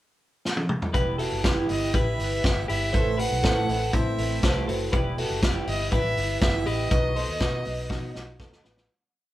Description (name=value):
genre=jangly indie pop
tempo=121 BPM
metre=4/4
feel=straight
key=E harmonic minor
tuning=A4 = 441 Hz
part: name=vintage drum kit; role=drums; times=0.5-8.9 s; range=hi-hat, kick drum, snare drum, toms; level=-26 LUFS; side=equal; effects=none
part: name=fingerpicked twelve-string acoustic guitar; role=accompaniment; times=0.9-8.9 s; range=A2 to B4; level=-31 LUFS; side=right 5 dB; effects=none
part: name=twelve-string electric guitar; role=arpeggios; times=0.9-8.9 s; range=C4 to D#5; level=-31 LUFS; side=left 4 dB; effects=none
part: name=vintage muted fingered electric bass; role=bass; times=0.9-8.9 s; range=E1 to B2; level=-30 LUFS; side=equal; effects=none
part: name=warm violin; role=melody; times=1.7-8.4 s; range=C5 to F#5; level=-30 LUFS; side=right 1 dB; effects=none
room=moderate studio ambience, RT60 0.5 s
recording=band playing live in one room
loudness=-22 LUFS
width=side -15 dB against mid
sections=0.0-0.9 pickup bar; 0.9-8.9 verse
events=drum fill 0.4-0.9, 7.9-8.9; fade-out 6.9-8.9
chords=0.0 N.C.; 0.9 Em; 2.9 Amadd9; 4.9 Em; 6.9 B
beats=0.44 | 0.94 1.44 1.94 2.44 | 2.94 3.44 3.94 4.43 | 4.93 5.43 5.92 6.42 | 6.92 7.41 7.91 8.40